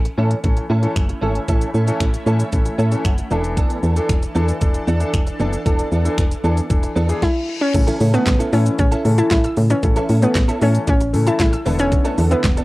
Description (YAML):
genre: dance-pop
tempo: 115 BPM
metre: 4/4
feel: straight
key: A major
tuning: A4 = 445 Hz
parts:
  - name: shimmering ambient pad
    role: sustained chords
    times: 0.2-7.2 s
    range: E3 to A4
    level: -32 LUFS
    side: right 1 dB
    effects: chorus, built-in reverb, sidechain pumping, cassette tape
  - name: direct-recorded clean electric guitar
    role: riff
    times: 0.0-12.6 s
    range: B3 to A4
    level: -26 LUFS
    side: right 3 dB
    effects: ensemble chorus, cassette tape
  - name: solid FM bass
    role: bass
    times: 0.0-12.6 s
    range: E1 to A2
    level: -18 LUFS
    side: equal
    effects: sidechain pumping
  - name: pop drum kit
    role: drums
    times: 0.1-12.6 s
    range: crash cymbal, finger snaps, handclaps, hi-hat, kick drum, shaker, snare drum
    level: -20 LUFS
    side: equal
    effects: none
  - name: clear concert grand piano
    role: accompaniment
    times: 0.2-12.6 s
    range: D3 to A5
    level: -26 LUFS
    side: left 2 dB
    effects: sidechain pumping, cassette tape
  - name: reverse cymbal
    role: sound effects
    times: 7.0-7.7 s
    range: none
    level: -32 LUFS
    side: left 6 dB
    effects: none
  - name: hollow square pluck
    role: melody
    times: 7.2-12.6 s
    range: B3 to E4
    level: -20 LUFS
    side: equal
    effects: chorus, cassette tape, tape echo
  - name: wide unison pluck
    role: arpeggios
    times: 7.7-12.5 s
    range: C#3 to E6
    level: -27 LUFS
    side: left 2 dB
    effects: sidechain pumping, cassette tape, tape echo
  - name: group handclap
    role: percussion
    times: 8.3-12.6 s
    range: none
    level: -35 LUFS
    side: right 2 dB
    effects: none
room: little or no reverb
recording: home recording on cassette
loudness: -15 LUFS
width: side -19 dB against mid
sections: 0.0-7.7 A section; 7.7-12.6 B section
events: grand piano fill 2.5-3.6; reverse cymbal 7.0-7.7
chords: 0.0 A; 3.3 E7sus4; 7.7 A; 11.7 E7sus4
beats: 0.44 0.96 | 1.48 2.01 2.53 3.05 | 3.57 4.09 4.61 5.14 | 5.66 6.18 6.70 7.22 | 7.75 8.27 8.79 9.31 | 9.83 10.35 10.88 11.40 | 11.92 12.44